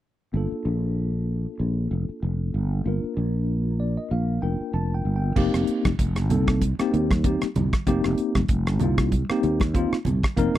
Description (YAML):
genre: electric jazz fusion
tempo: 96 BPM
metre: 4/4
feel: swing 56% on 16ths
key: F mixolydian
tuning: A4 = 439 Hz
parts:
  - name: tine electric piano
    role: accompaniment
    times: 0.3-10.6 s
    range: Bb3 to A5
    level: -27 LUFS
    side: left 2 dB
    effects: fast stereo tremolo
  - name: sustaining fretless electric bass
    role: bass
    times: 0.3-10.6 s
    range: F1 to Eb2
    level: -24 LUFS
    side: equal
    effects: lush chorus
  - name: damped 70s drum kit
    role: drums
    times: 5.4-10.6 s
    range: crash cymbal, hi-hat, kick drum, rim click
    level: -25 LUFS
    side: equal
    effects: none
  - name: congas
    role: percussion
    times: 5.9-10.2 s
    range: none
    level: -30 LUFS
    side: right 3 dB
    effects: none
room: little or no reverb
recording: dry, close 1970s-style studio recording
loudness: -22 LUFS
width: side -13 dB against mid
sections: 0.3-5.4 A section; 5.4-10.6 B section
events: tine electric piano fill 3.5-5.4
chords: 0.3 Gm9; 5.4 F9sus4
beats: | 0.34 0.97 1.60 2.23 | 2.86 3.49 4.11 4.74 | 5.37 5.99 6.62 7.25 | 7.87 8.49 9.12 9.74 | 10.37